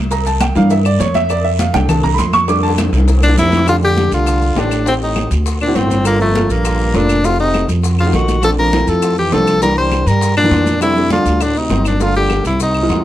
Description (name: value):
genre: Afro-Cuban jazz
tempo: 202 BPM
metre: 4/4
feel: straight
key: F major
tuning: A4 = 441 Hz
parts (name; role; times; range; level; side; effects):
- upright bass; bass; 0.0-13.0 s; F1 to G2; -16 LUFS; equal; none
- dark baby grand piano; accompaniment; 0.1-13.0 s; E3 to D6; -18 LUFS; right 1 dB; none
- congas; percussion; 0.1-13.0 s; none; -22 LUFS; left 1 dB; none
- cowbell and bongos; percussion; 0.1-13.0 s; none; -26 LUFS; left 5 dB; none
- guiro; percussion; 0.1-13.0 s; none; -32 LUFS; right 8 dB; none
- maracas; percussion; 0.1-13.0 s; none; -32 LUFS; left 7 dB; none
- claves; percussion; 0.4-12.9 s; none; -29 LUFS; left 5 dB; none
- clear tenor saxophone; melody; 3.2-13.0 s; A3 to C5; -16 LUFS; left 2 dB; none
- mellow trombone; second line; 3.2-13.0 s; F2 to G3; -22 LUFS; right 4 dB; none
room: light reverb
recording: none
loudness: -12 LUFS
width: side -13 dB against mid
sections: 0.0-3.7 A section; 3.7-13.0 B section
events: grand piano solo 0.0-3.7; drum fill 2.5-3.7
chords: 0.1 C9; 1.3 F6; 4.9 Am7b5; 5.5 D7; 6.1 Gm7; 7.2 F7b9; 8.4 Bbmaj9; 9.6 C9; 10.8 F6; 11.4 D7b9; 12.0 Gm7